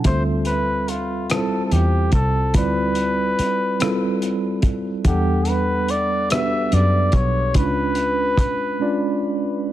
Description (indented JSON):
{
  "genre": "slow six-eight R&B",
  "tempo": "48 BPM (dotted quarters)",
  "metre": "6/8",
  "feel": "straight",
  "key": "unclear",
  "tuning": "A4 = 440 Hz",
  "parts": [
    { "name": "mellow tine electric piano", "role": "accompaniment", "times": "0.0-9.7 s", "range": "F#3 to F#5", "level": "-22 LUFS", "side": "right 1 dB", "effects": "medium stereo tremolo" },
    { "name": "cloth-damped thuddy drum kit", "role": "drums", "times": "0.0-8.6 s", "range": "hi-hat, kick drum, rim click", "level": "-21 LUFS", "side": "equal", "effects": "none" },
    { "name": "warm flugelhorn", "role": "melody", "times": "0.1-9.6 s", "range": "F4 to E5", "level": "-23 LUFS", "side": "left 1 dB", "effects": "none" },
    { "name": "vintage muted fingered electric bass", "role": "bass", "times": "0.1-8.4 s", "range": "B1 to F#2", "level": "-21 LUFS", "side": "equal", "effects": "none" }
  ],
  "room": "light reverb",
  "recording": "none",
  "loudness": "-18 LUFS",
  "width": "side -13 dB against mid",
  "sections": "0.0-9.7 A section",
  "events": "drums muted 8.8-9.7",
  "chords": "0.0 Dm11; 5.0 Em11; 7.5 C#7b9"
}